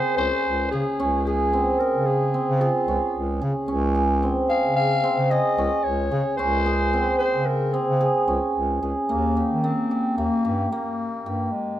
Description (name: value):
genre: contemporary instrumental, chamber music in an uneven meter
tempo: 111 BPM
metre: 5/4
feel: straight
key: Eb mixolydian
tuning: A4 = 437 Hz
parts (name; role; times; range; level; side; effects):
- growling clarinet; melody; 0.0-11.8 s; Ab3 to F5; -26 LUFS; left 4 dB; none
- cimbalom; arpeggios; 0.0-11.8 s; Bb3 to Ab4; -22 LUFS; right 2 dB; none
- warm bass clarinet; bass; 0.2-11.5 s; Db2 to Eb3; -26 LUFS; equal; none
room: light reverb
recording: close, detailed microphones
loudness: -20 LUFS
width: side -12 dB against mid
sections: 0.0-9.1 A section; 9.1-11.8 B section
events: none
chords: 0.0 Dbmaj7(no3); 9.1 Eb